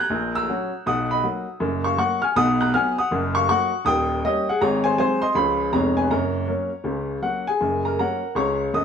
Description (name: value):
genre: jazz, stride piano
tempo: 160 BPM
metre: 4/4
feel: swing 64% on 8ths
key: F# major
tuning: A4 = 440 Hz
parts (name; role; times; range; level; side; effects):
- warm upright piano; solo; 0.0-8.8 s; D#1 to F#6; -20 LUFS; left 1 dB; none
room: wet studio reverb, RT60 0.6 s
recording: band playing live in one room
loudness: -20 LUFS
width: side -7 dB against mid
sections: 0.0-7.6 A section; 7.6-8.8 A section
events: none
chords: 0.1 F#7/A#; 0.8 Bmaj7; 1.6 F#; 2.4 B5; 3.1 F#; 3.9 D#7; 4.6 G#7; 5.4 C#7; 5.7 C#7/E#; 6.1 F#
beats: | 0.10 0.47 0.85 1.22 | 1.60 1.97 2.35 2.73 | 3.10 3.48 3.85 4.23 | 4.61 4.98 5.36 5.73 | 6.11 6.48 6.86 7.23 | 7.61 7.99 8.36 8.73